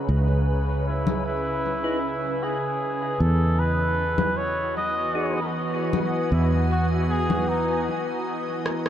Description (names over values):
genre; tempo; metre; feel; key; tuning
ambient dub; 77 BPM; 4/4; straight; unclear; A4 = 439 Hz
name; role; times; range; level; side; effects
soft additive organ-like pad; sustained chords; 0.0-8.9 s; C#3 to G#5; -27 LUFS; equal; ensemble chorus, built-in reverb
fingered electric bass; bass; 0.0-7.9 s; C#2 to E2; -24 LUFS; equal; none
trumpet with cup mute; melody; 0.9-7.9 s; D#4 to D#5; -28 LUFS; equal; dub echo
electronic congas and rim click; drums; 1.1-8.9 s; none; -28 LUFS; left 2 dB; dub echo
percussive tonewheel organ; stabs; 1.8-5.4 s; D#4 to B4; -35 LUFS; left 2 dB; slow rotary speaker, vintage 12-bit sampler grit, dub echo
room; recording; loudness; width
moderate spring reverb, RT60 2.2 s; echo-heavy mix; -22 LUFS; side -10 dB against mid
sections
0.0-8.9 A section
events
filter sweep on ambient pad 0.0-8.9; break 7.9-8.9; drum fill 8.7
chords
0.0 C#m7; 3.2 Emaj7